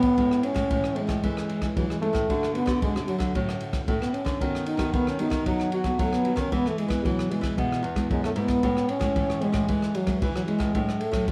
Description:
samba and choro; 114 BPM; 4/4; straight; A major; A4 = 439 Hz
mellow trombone; melody; 0.0-11.3 s; E3 to F#4; -29 LUFS; equal
nylon-string guitar; accompaniment; 0.0-11.3 s; A2 to F#4; -34 LUFS; equal
nylon-string guitar; bass; 0.0-11.3 s; E2 to F#3; -32 LUFS; equal
open jazz drum kit; drums; 0.0-11.3 s; kick drum, ride cymbal, rim click; -32 LUFS; equal
light reverb; small room reverb; -26 LUFS; mono
0.2-11.3 A section
0.2 Amaj7; 2.3 Dmaj7; 4.4 B7/D#; 6.5 E; 8.6 Amaj7; 10.8 D/A

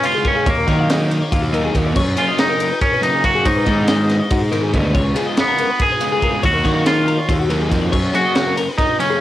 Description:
math rock and midwest emo; 281 BPM (eighths); 7/8; straight; F# major; A4 = 440 Hz
twangy electric guitar; melody; 0.0-9.2 s; A#3 to G#4; -19 LUFS; equal; wide subtle chorus, cassette tape
twelve-string electric guitar; arpeggios; 0.0-9.2 s; E#4 to F#5; -24 LUFS; left 4 dB; cassette tape
overdriven semi-hollow guitar; riff; 0.0-9.2 s; C#3 to E#4; -23 LUFS; right 1 dB; cassette tape
crisp fusion drum kit; drums; 0.0-9.1 s; crash cymbal, kick drum, ride cymbal, snare drum; -21 LUFS; equal; cassette tape
fuzz picked electric bass; bass; 0.5-8.1 s; C#2 to D#3; -19 LUFS; equal; overdrive, transformer saturation
studio reverb; home recording on cassette; -14 LUFS; side -13 dB against mid
0.0-9.2 A section
0.5 D#m9; 2.0 F#add9; 3.5 G#m7; 4.9 C#7; 6.4 D#m9; 7.9 F#add9

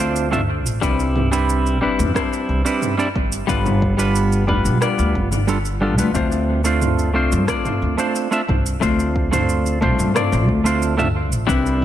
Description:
sunset chillout; 90 BPM; 4/4; straight; D dorian; A4 = 440 Hz
semi-hollow electric guitar; accompaniment; 0.0-11.8 s; G3 to E5; -20 LUFS; moving between left 5 dB and right 4 dB; auto-pan, tape echo
upright bass; bass; 0.0-11.8 s; F1 to G2; -20 LUFS; equal
deep house drum kit; drums; 0.2-11.8 s; rim click, shaker, toms; -25 LUFS; equal; overdrive
electronic kick drum; drums; 0.8-11.6 s; -24 LUFS; equal; overdrive
light reverb; echo-heavy mix, lossy compression artefacts; -16 LUFS; side -11 dB against mid
0.0-11.8 A section
0.0 Dm7; 0.8 Cmaj9; 3.2 G7; 6.2 Dm7

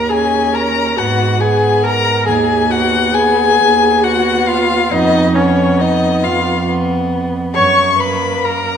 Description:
classical, slow romantic movement for string quartet; 46 BPM (dotted quarters); 6/8; rubato; A4 = 443 Hz
muted violin; melody; 0.0-8.8 s; C#5 to C#6; -15 LUFS; left 7 dB
muted viola; accompaniment; 0.0-8.8 s; C#4 to C#5; -17 LUFS; right 3 dB
muted cello; bass; 0.0-8.8 s; Eb2 to Ab2; -18 LUFS; right 4 dB
muted violin; second line; 0.1-8.8 s; A#3 to Db4; -22 LUFS; left 3 dB
wet recital hall reverb, RT60 1.6 s; minimal, uncompressed stereo recording; -11 LUFS; side -8 dB against mid
0.0-8.8 A section
0.0 Eb7sus4; 1.0 Abm; 2.3 B/D#; 4.9 C#9/E#; 7.6 F#

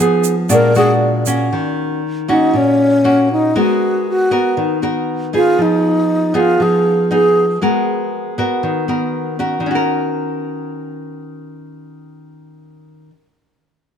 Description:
bossa nova; 118 BPM; 4/4; straight; Eb minor; A4 = 441 Hz
nylon-string guitar; accompaniment; 0.0-13.3 s; Bb2 to Bb4; -16 LUFS; equal
egg shaker; percussion; 0.2-1.5 s; -24 LUFS; right 8 dB
breathy wooden-headed alto flute; melody; 0.5-7.6 s; Db4 to Bb4; -15 LUFS; equal
light reverb; -13 LUFS; side -8 dB against mid
0.0-1.5 A section; 1.5-9.6 B section; 9.6-13.7 C section
alto flute solo 0.0-1.5, 1.5-9.6
0.5 Bb7alt; 1.5 Ebm7; 3.5 Abm9; 5.6 Fm7b5; 7.6 Abm9; 9.6 Ebm7

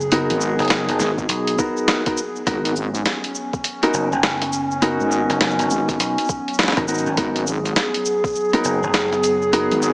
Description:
glitch hop; 102 BPM; 4/4; swing 62% on 16ths; G# minor; A4 = 442 Hz
warbly tape-like pad; sustained chords; 0.0-9.9 s; F#3 to G#4; -23 LUFS; equal; chorus, built-in reverb, sidechain pumping
vintage slap bass; bass; 0.0-9.7 s; F#1 to B1; -25 LUFS; equal
boom bap sampler-style drum kit; drums; 0.0-9.9 s; hi-hat, shaker, snare drum; -21 LUFS; equal; studio reverb
mellow electric guitar; stabs; 0.1-9.9 s; B3 to A#4; -22 LUFS; equal; sidechain pumping, tape echo
wobble bass; bass; 0.3-9.9 s; G#1; -24 LUFS; equal; chorus
electronic kick drum; drums; 1.2-8.3 s; -27 LUFS; equal; studio reverb
moderate lush hall reverb, RT60 2.7 s; small speaker sound; -17 LUFS; side -28 dB against mid
0.0-9.9 A section
0.0 G#m7

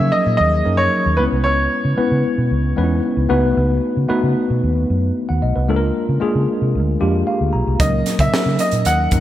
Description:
polished 1980s jazz-funk pop; 114 BPM; 4/4; straight; A4 = 439 Hz
bright concert grand piano; melody; 0.0-3.0, 7.8-9.2 s; B4 to F#5; -19 LUFS; right 1 dB
tine electric piano; accompaniment; 0.0-9.2 s; E3 to A#5; -19 LUFS; left 1 dB; medium stereo tremolo, wide subtle chorus
vintage muted fingered electric bass; bass; 0.0-9.2 s; B1 to C#3; -18 LUFS; equal
crisp fusion drum kit; drums; 7.8-9.2 s; hi-hat, kick drum, snare drum; -20 LUFS; equal; gated reverb
moderate lush hall reverb, RT60 2.6 s; bright 1980s-style digital production; -15 LUFS; side -13 dB against mid
0.0-9.2 A section
tine electric piano fill 7.0-7.8
0.0 D#m7; 1.2 C#m7; 3.3 B7; 5.7 A#7/C#; 7.8 D#m7/C#

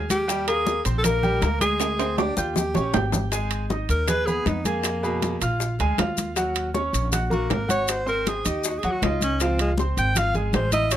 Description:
Afro-Cuban jazz; 158 BPM; 4/4; straight; A4 = 439 Hz
bright upright piano; accompaniment; 0.0-11.0 s; Cb3 to Ab6; -27 LUFS; right 1 dB
upright bass; bass; 0.0-11.0 s; Ab1 to E#2; -27 LUFS; equal
breathy alto saxophone; melody; 0.1-11.0 s; G#3 to G5; -25 LUFS; equal
congas; percussion; 0.1-11.0 s; -29 LUFS; left 1 dB
maracas; percussion; 0.1-11.0 s; -32 LUFS; left 7 dB
timbales; percussion; 0.1-11.0 s; -30 LUFS; right 9 dB
bongos; percussion; 0.3-11.0 s; -31 LUFS; left 7 dB
light reverb; close, detailed microphones; -21 LUFS; side -11 dB against mid
0.0-3.3 A section; 3.3-11.0 B section
drum fill 1.8-3.3; alto saxophone solo 3.3-11.0
0.3 Eb6; 1.8 Fm13/D; 2.6 Eb7; 3.3 G#m; 4.8 Fdim; 5.6 A#7; 6.4 D#m7; 7.9 G#7; 9.4 C#maj7

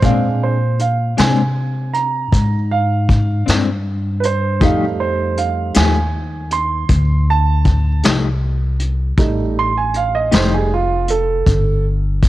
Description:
slow blues; 52 BPM (dotted quarters); 12/8; straight; F mixolydian; A4 = 440 Hz
mellow electric guitar; accompaniment; 0.0-10.6 s; Bb2 to G4; -21 LUFS; left 7 dB; tremolo, cassette tape
warm upright piano; accompaniment; 0.0-11.8 s; G3 to C6; -19 LUFS; right 5 dB; cassette tape
upright bass; bass; 0.0-12.3 s; F1 to C3; -17 LUFS; left 1 dB
vintage brush drum kit; drums; 0.0-12.3 s; hi-hat, kick drum, snare drum; -17 LUFS; left 1 dB; cassette tape
studio reverb; home recording on cassette; -14 LUFS; side -15 dB against mid
0.0-12.3 A section
upright piano solo 0.0-12.3
0.0 Bb9; 4.6 F9

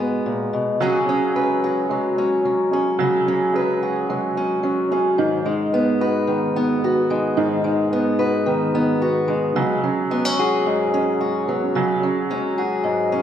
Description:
acoustic folk duo or small band; 110 BPM; 4/4; straight; G# minor; A4 = 441 Hz
fingerpicked acoustic archtop guitar; accompaniment; 0.0-13.2 s; G#2 to B4; -20 LUFS; left 1 dB
clear upright piano; arpeggios; 0.8-13.2 s; D#3 to G#4; -23 LUFS; right 4 dB
wet recital hall reverb, RT60 1.5 s; recorded in a church or concert hall; -18 LUFS; side -9 dB against mid
0.0-5.2 A section; 5.2-13.2 B section
0.0 G#m7; 0.8 C#sus4; 5.2 G#m7; 9.6 C#sus4

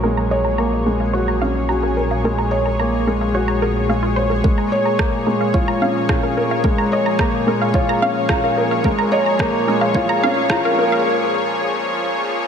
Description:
piano and strings electronica; 109 BPM; 4/4; straight; Bb minor; A4 = 439 Hz
lush unison pad; sustained chords; 0.0-12.5 s; Bb2 to Db5; -22 LUFS; left 1 dB; chorus, sidechain pumping
wide unison pluck; arpeggios; 0.0-11.0 s; F4 to Bb5; -23 LUFS; right 1 dB; sidechain pumping, ping-pong delay
felt-muted upright piano; riff; 0.0-12.5 s; Ab3 to Db5; -19 LUFS; equal; ping-pong delay
round analog bass; bass; 0.0-4.4 s; Bb1; -23 LUFS; equal; tube saturation, sidechain pumping
electronic kick drum; drums; 4.4-10.6 s; -20 LUFS; equal
electronic rim click; drums; 5.0-10.6 s; -28 LUFS; right 2 dB; overdrive, high-pass filter on snare, low-pass filter on snare, high-pass filter on room, low-pass filter on room
moderate lush hall reverb, RT60 2.9 s; high-pass filter, low-pass filter; -16 LUFS; side -7 dB against mid
0.0-4.4 A section; 4.4-12.5 B section
filter sweep 0.0-4.4, 4.4-12.5; build-up 4.4-12.5; break 11.1-12.5
0.0 Gbadd9/Bb; 4.4 Bbm7

